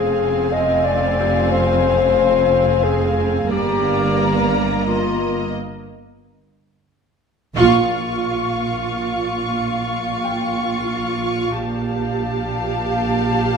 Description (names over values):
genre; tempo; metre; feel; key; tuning
cinematic, suspense film score; 90 BPM; 3/4; straight; G phrygian, Bb dorian from 7.6 s; A4 = 442 Hz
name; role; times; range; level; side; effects
warm studio violin section; melody; 0.0-13.6 s; Ab5 to Db6; -27 LUFS; left 4 dB; none
mellow clarinet; second line; 0.0-5.5 s; F4 to Eb5; -18 LUFS; left 4 dB; none
warm studio violin section; second line; 0.0-13.6 s; D5 to F5; -26 LUFS; equal; none
rich studio viola section; accompaniment; 0.0-13.6 s; Bb3 to G4; -23 LUFS; right 4 dB; none
rich studio cello section; bass; 0.0-13.6 s; F2 to Bb2; -25 LUFS; right 2 dB; none
rich studio double bass section; bass; 0.0-13.6 s; F1 to Bb1; -25 LUFS; right 2 dB; none
concert harp; texture; 1.2-5.1, 8.2-13.6 s; G4 to G6; -31 LUFS; left 7 dB; none
room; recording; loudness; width
wet recital hall reverb, RT60 1.3 s; minimal, uncompressed stereo recording; -16 LUFS; side -6 dB against mid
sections
0.0-7.6 A section; 7.6-13.6 B section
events
break 5.5-7.6; band accent 7.6-8.2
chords
0.0 Fm; 3.5 Gm; 5.5 N.C.; 7.6 Bbm; 11.6 Fadd9/Bb